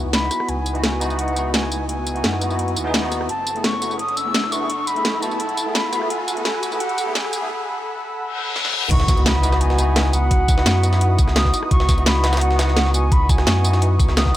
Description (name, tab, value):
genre	liquid drum and bass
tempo	171 BPM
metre	4/4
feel	straight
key	C# minor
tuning	A4 = 438 Hz
part	bell-like tine electric piano	accompaniment	0.0-14.4 s	A3 to G#4	-26 LUFS	equal	ensemble chorus, low-pass filter
part	warm analog pad	sustained chords	0.0-14.4 s	F#4 to E6	-29 LUFS	equal	chorus
part	sub bass with octave	bass	0.0-14.3 s	F#1 to F#2	-20 LUFS	equal	none
part	riser, reverse cymbal and impact	sound effects	0.3-10.3 s	none	-29 LUFS	left 1 dB	none
part	reedy concert flute	melody	0.1-14.4 s	F#5 to E6	-25 LUFS	equal	low-pass filter, tape echo
part	drum and bass drum kit	drums	0.1-14.4 s	crash cymbal, hi-hat, rim click, snare drum, tambourine, toms	-23 LUFS	equal	none
part	electronic kick drum	drums	8.9-14.3 s	none	-18 LUFS	equal	none
part	jungle sampler-style drum kit	drums	8.9-14.4 s	hi-hat, snare drum	-28 LUFS	equal	high-pass filter on hats, high-pass filter on snare, high-pass filter on room
room	light reverb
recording	high-pass filter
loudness	-17 LUFS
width	side -14 dB against mid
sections	0.0-8.9 A section; 8.9-14.4 B section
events	build-up 0.0-8.9; filter sweep on tine electric piano 0.0-8.9; filter sweep on flute 0.0-8.9; filter sweep 0.0-8.9; riser 0.3-7.5; reverse cymbal 8.3-8.9; drum fill 8.6-8.9; drop 8.9-14.4; impact 8.9-10.3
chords	0.0 C#m11; 3.3 F#m11; 8.9 C#m11